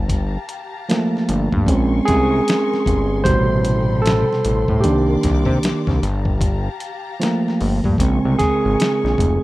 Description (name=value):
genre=R&B, neo-soul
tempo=76 BPM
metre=4/4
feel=swing 62% on 16ths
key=unclear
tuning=A4 = 440 Hz
part: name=dark studio string section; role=sustained chords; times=0.0-9.4 s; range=G4 to D6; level=-31 LUFS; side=left 5 dB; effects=none
part: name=fat analog bass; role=bass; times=0.0-9.4 s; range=F1 to C3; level=-20 LUFS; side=left 1 dB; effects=none
part: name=dusty soul sampler-style drum kit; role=drums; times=0.1-9.4 s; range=hi-hat, kick drum, snare drum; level=-22 LUFS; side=left 1 dB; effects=none
part: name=overdriven tine electric piano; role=accompaniment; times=0.9-9.4 s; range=B2 to C5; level=-17 LUFS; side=right 1 dB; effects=none
room=little or no reverb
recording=rough home demo mix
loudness=-15 LUFS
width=side -18 dB against mid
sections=0.0-9.4 A section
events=tine electric piano solo 0.0-9.4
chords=0.0 Gm9; 1.7 Bbm9; 3.2 Am9; 4.8 Cm9; 6.0 Gm9; 8.0 Bbm9